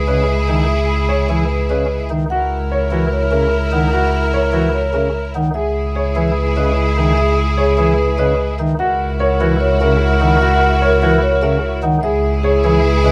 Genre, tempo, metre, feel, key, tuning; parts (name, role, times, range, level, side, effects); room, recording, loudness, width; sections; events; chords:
classical, minimalist pattern music; 148 BPM; 4/4; straight; A4 = 440 Hz
marimba with medium mallets; melody; 0.0-13.1 s; G#4 to F#5; -24 LUFS; equal
bright alto flute; second line; 0.0-13.1 s; G#4 to A#4; -24 LUFS; equal
bright studio string section; sustained chords; 0.0-13.1 s; E4 to A#4; -26 LUFS; equal
rich double bass; bass; 0.0-13.1 s; C#2; -20 LUFS; equal
chamber organ, cornet; accompaniment; 0.1-13.1 s; C#3 to E3; -23 LUFS; equal
warm grand piano; arpeggios; 0.1-13.1 s; F#4 to C#5; -24 LUFS; equal
light reverb; close, detailed microphones; -16 LUFS; mono
0.0-13.1 A section
0.0 Emaj7/C#; 2.3 F#7/C#; 5.5 Emaj7/C#; 8.8 F#7/C#; 12.0 E/C#